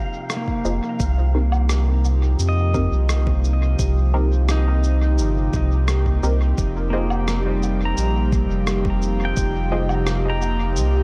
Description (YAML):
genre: ambient dub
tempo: 86 BPM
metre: 4/4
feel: straight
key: unclear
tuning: A4 = 439 Hz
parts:
  - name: airy breathy pad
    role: sustained chords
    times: 0.0-11.0 s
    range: C3 to G5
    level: -29 LUFS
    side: equal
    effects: chorus
  - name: pedal steel guitar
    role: arpeggios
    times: 0.0-11.0 s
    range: G3 to Bb5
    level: -31 LUFS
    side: equal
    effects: tape echo
  - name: wind-like tuned noise texture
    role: texture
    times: 0.0-1.0 s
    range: F5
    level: -39 LUFS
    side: equal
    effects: built-in reverb
  - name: electronic rim click, shaker and woodblock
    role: drums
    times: 0.3-10.9 s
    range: none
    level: -33 LUFS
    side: equal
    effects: dub echo
  - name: electronic kick drum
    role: drums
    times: 0.5-9.5 s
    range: none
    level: -27 LUFS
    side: equal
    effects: overdrive
  - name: filtered dub chord stab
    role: stabs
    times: 0.6-9.9 s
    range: C4 to Eb5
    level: -33 LUFS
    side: equal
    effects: phaser, dub echo
  - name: warm sub bass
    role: bass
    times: 0.6-11.0 s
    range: F1 to F2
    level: -22 LUFS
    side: equal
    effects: tube saturation
room: little or no reverb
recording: none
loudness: -20 LUFS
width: mono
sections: 0.0-1.0 A section; 1.0-11.0 B section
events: none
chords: 0.0 Fm7; 1.0 Cm7; 6.6 Fm7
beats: 0.30 | 1.00 1.70 2.40 3.09 | 3.79 4.49 5.19 5.88 | 6.58 7.28 7.98 8.67 | 9.37 10.07 10.77